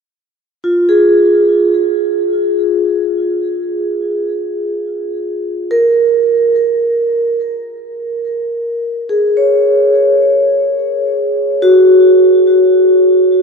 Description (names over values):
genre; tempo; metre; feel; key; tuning
ambient; free time; none; none; unclear; A4 = 441 Hz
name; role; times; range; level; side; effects
vibraphone with medium hard mallets; solo; 0.6-13.4 s; F4 to Db5; -10 LUFS; equal; ping-pong delay
room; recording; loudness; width
wet huge ambient reverb, RT60 7.7 s; none; -10 LUFS; side -5 dB against mid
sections
0.0-13.4 A section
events
none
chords
0.0 Fm; 5.7 Gbadd9